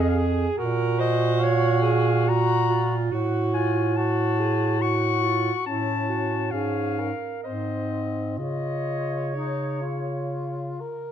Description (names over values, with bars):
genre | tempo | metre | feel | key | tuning
classical, lyrical piece for single-reed quartet | 61-73 BPM | 3/4 | rubato | Db major | A4 = 440 Hz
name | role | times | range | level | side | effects
clear clarinet | melody | 0.0-10.8 s | Db5 to Db6 | -29 LUFS | left 8 dB | none
warm alto saxophone | second line | 0.0-10.8 s | E4 to Db5 | -29 LUFS | right 7 dB | none
mellow tenor saxophone | accompaniment | 0.0-11.1 s | C4 to Bb4 | -30 LUFS | left 3 dB | none
warm bass clarinet | bass | 0.0-10.9 s | F2 to Db3 | -25 LUFS | right 2 dB | none
room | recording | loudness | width
light reverb | dark, warm production | -22 LUFS | side -9 dB against mid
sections
0.0-11.1 A section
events
none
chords
0.0 Fm; 0.6 Gb/Bb; 3.1 Gbm/A; 5.7 A; 6.5 Db/Ab; 7.4 Ab; 8.4 Db